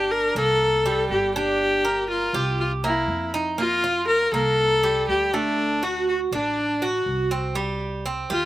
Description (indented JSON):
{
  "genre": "latin",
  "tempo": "121 BPM",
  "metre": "4/4",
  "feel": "straight",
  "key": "G minor",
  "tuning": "A4 = 440 Hz",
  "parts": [
    { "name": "clear viola", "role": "melody", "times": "0.0-8.5 s", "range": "D4 to Bb4", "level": "-22 LUFS", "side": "left 1 dB", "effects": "slapback echo" },
    { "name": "Cuban tres", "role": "arpeggios", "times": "0.0-8.5 s", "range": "G3 to Bb4", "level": "-26 LUFS", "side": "right 4 dB", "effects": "slapback echo" },
    { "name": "upright bass", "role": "bass", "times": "0.0-8.5 s", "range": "G1 to F2", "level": "-31 LUFS", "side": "equal", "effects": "none" }
  ],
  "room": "little or no reverb",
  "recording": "recorded outdoors, with no room sound",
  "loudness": "-20 LUFS",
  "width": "side -15 dB against mid",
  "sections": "0.0-7.6 A section",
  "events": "none",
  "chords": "0.0 Gm; 2.6 C7; 3.6 Fsus4; 4.6 C5; 5.6 D; 7.6 C5"
}